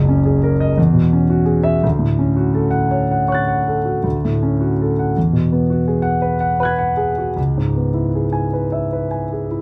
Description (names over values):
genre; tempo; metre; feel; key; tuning
classical, impressionist solo piano; 55 BPM (dotted quarters); 6/8; uneven beats, rubato; unclear; A4 = 440 Hz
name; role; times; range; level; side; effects
warm concert grand piano; solo; 0.0-9.6 s; F#1 to A6; -17 LUFS; equal; none
room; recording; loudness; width
little or no reverb; close, detailed microphones; -17 LUFS; mono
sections
0.0-9.6 A section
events
none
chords
0.0 F#69; 0.8 E69; 1.8 Dmaj7; 5.2 Eadd9; 7.4 C#m7